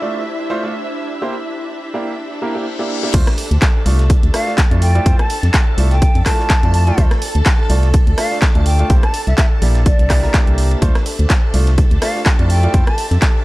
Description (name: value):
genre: piano house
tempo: 125 BPM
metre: 4/4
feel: swing 56% on 16ths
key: D minor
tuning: A4 = 440 Hz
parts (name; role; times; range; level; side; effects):
- string machine, violins; sustained chords; 0.0-13.4 s; E4 to A5; -27 LUFS; equal; ensemble chorus, sidechain pumping
- clear upright piano; riff; 0.0-12.8 s; A3 to E5; -24 LUFS; right 2 dB; sidechain pumping, analog delay
- clear symphonic string section; texture; 0.0-13.4 s; D4 to E5; -31 LUFS; right 1 dB; sidechain pumping
- reverse cymbal; sound effects; 2.4-3.1 s; none; -27 LUFS; left 8 dB; none
- organ-like FM bass; bass; 3.1-13.2 s; Bb1 to F2; -14 LUFS; equal; sidechain pumping
- breakbeat sampler-style drum kit; drums; 3.1-13.3 s; hi-hat, snare drum; -33 LUFS; right 1 dB; none
- electronic kick drum; drums; 3.1-13.3 s; none; -14 LUFS; equal; overdrive
- house drum kit; drums; 3.1-13.3 s; crash cymbal, handclaps, hi-hat, rim click; -22 LUFS; equal; overdrive, low-pass filter on hats, low-pass filter on cymbals, low-pass filter on snare, low-pass filter on room
- mellow hollow silver concert flute; melody; 4.3-13.1 s; D5 to A5; -23 LUFS; equal; analog delay
room: digital ambience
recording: dry, gritty hardware recording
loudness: -12 LUFS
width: side -19 dB against mid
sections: 0.0-3.1 A section; 3.1-13.4 B section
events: reverse cymbal 2.4-3.1; drop 3.1-13.4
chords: 0.0 Dm7; 1.2 C7; 3.1 Dm7; 8.9 C7; 10.8 Dm7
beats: 0.26 0.74 | 1.22 1.70 2.18 2.66 | 3.14 3.62 4.10 4.58 | 5.06 5.54 6.02 6.50 | 6.98 7.46 7.94 8.42 | 8.90 9.38 9.86 10.34 | 10.82 11.30 11.78 12.26 | 12.74 13.22